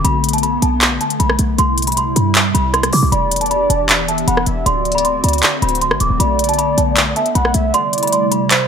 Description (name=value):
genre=hip hop, trap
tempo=156 BPM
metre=4/4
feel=half-time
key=unclear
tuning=A4 = 435 Hz
part: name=small celesta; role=melody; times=0.0-8.5 s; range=A5 to D6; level=-19 LUFS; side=left 1 dB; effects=none
part: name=hollow soft pad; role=sustained chords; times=0.0-8.7 s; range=C3 to G4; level=-21 LUFS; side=equal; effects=ensemble chorus
part: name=short 808-style bass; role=bass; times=0.0-7.7 s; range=D1 to C3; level=-19 LUFS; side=equal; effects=none
part: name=trap drum kit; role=drums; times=0.0-8.6 s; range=handclaps, hi-hat, rim click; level=-16 LUFS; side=equal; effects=none
part: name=warm velvety synth lead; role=second line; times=3.1-8.7 s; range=C5 to F#5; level=-20 LUFS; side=right 3 dB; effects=chorus, ping-pong delay
room=light reverb, digital ambience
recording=none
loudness=-13 LUFS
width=side -7 dB against mid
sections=0.0-8.7 A section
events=kick muted 7.7-8.7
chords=0.0 Bm7; 1.6 C6; 3.1 Em7; 4.7 D7; 6.2 Bm7; 7.7 C6